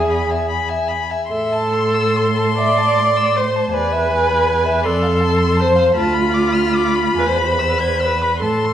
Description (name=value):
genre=classical, slow romantic movement for string quartet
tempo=46-54 BPM (dotted quarters)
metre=6/8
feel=rubato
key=unclear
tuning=A4 = 440 Hz
part: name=rich violin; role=melody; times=0.0-8.7 s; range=G#5 to C6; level=-23 LUFS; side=left 6 dB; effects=none
part: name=warm violin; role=second line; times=0.0-8.7 s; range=D5 to G#6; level=-23 LUFS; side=left 2 dB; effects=none
part: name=rich viola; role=accompaniment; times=0.0-8.7 s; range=F4 to D5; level=-17 LUFS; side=right 1 dB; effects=none
part: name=rich cello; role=bass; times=0.0-8.7 s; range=D2 to A2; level=-21 LUFS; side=right 2 dB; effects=none
room=wet recital hall reverb, RT60 1.3 s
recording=none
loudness=-14 LUFS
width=side -10 dB against mid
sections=0.0-8.7 A section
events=none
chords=0.0 E; 1.3 Am; 3.7 E; 4.9 F; 6.0 Bdim/D; 7.2 E